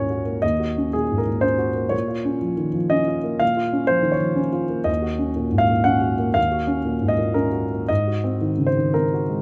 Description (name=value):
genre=neoclassical minimalist piano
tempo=120 BPM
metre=3/4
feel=rubato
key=unclear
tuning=A4 = 440 Hz
part: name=dark grand piano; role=solo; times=0.0-9.4 s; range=Eb2 to Gb5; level=-21 LUFS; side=equal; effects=none
room=light reverb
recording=none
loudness=-21 LUFS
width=mono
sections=0.0-9.4 A section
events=none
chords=0.0 Ebm7; 1.9 Bbm; 4.9 Ebm7; 7.9 Ab7